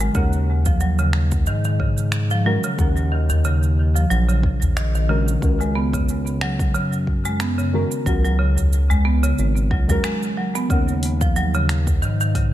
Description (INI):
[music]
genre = organic downtempo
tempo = 91 BPM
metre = 4/4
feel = swing 55% on 16ths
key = Eb minor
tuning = A4 = 440 Hz
[part]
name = deep mellow chord stab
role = accompaniment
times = 0.0-12.5 s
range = Eb3 to Gb5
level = -28 LUFS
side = left 1 dB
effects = chorus, sidechain pumping, tape echo
[part]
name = marimba with hard mallets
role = arpeggios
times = 0.0-12.5 s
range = Db3 to Cb4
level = -23 LUFS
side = equal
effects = low-pass filter, tape echo
[part]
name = smooth synth bass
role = bass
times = 0.0-12.5 s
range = Ab1 to Ab2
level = -20 LUFS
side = equal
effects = none
[part]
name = afro-pop drum kit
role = drums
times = 0.0-12.5 s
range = finger snaps, hi-hat, shaker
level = -30 LUFS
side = right 3 dB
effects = none
[part]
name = electronic kick drum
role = drums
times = 0.1-12.5 s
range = none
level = -22 LUFS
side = equal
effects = none
[part]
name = udu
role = percussion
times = 0.7-10.0 s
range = none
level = -25 LUFS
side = left 1 dB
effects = none
[sound]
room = light reverb, digital ambience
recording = none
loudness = -17 LUFS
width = side -13 dB against mid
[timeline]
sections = 0.0-10.7 A section; 10.7-12.5 B section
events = filter sweep on marimba 0.0-10.7; break 10.0-10.7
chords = 0.1 Ebm11; 5.4 Dbsus4; 10.7 Ebm11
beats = | 0.15 0.81 1.47 2.13 | 2.79 3.45 4.11 4.77 | 5.42 6.08 6.74 7.40 | 8.06 8.72 9.38 10.04 | 10.70 11.36 12.02